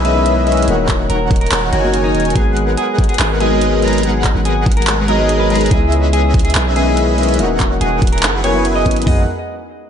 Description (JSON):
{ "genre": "future bass", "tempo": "143 BPM", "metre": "4/4", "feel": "half-time", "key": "G# minor", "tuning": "A4 = 440 Hz", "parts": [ { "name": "clean electric guitar", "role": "melody", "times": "0.0-9.2 s", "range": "D#4 to D#5", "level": "-22 LUFS", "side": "equal", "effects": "wide subtle chorus, sidechain pumping, analog delay" }, { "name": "warm grand piano", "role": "accompaniment", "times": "0.0-9.2 s", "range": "D#3 to B4", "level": "-20 LUFS", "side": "left 3 dB", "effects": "sidechain pumping, analog delay" }, { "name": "airy dreamy lead", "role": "arpeggios", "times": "0.0-9.2 s", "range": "D#5 to A#5", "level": "-24 LUFS", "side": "equal", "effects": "chorus, cassette tape, sidechain pumping, analog delay" }, { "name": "soft supersaw", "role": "riff", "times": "0.0-9.2 s", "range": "D#3 to A#5", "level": "-19 LUFS", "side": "left 1 dB", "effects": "phaser, cassette tape, sidechain pumping, analog delay" }, { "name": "long sustained 808-style bass", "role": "bass", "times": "0.0-9.3 s", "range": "D#1 to C#2", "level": "-18 LUFS", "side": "equal", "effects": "sidechain pumping" }, { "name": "dubstep drum kit", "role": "drums", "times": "0.0-9.1 s", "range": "handclaps, hi-hat", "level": "-22 LUFS", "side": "right 1 dB", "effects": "none" }, { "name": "trap drum kit", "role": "drums", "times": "0.9-9.2 s", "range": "hi-hat, kick drum, toms", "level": "-15 LUFS", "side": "equal", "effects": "none" } ], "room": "moderate plate reverb, RT60 2.1 s", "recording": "dreamy mix soaked in reverb, nothing above 10.7 kHz", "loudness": "-12 LUFS", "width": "side -8 dB against mid", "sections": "0.0-9.1 A section", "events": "drop 0.0-9.1", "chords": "0.0 C#m9; 0.7 D#m7; 2.4 G#m7; 5.7 C#m9; 7.4 D#m7; 8.2 F#7sus4; 9.1 G#m7", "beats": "0.26 | 0.68 1.10 1.52 1.94 | 2.36 2.77 3.19 3.62 | 4.03 4.45 4.87 5.29 | 5.71 6.13 6.55 6.97 | 7.39 7.81 8.23 8.65 | 9.07" }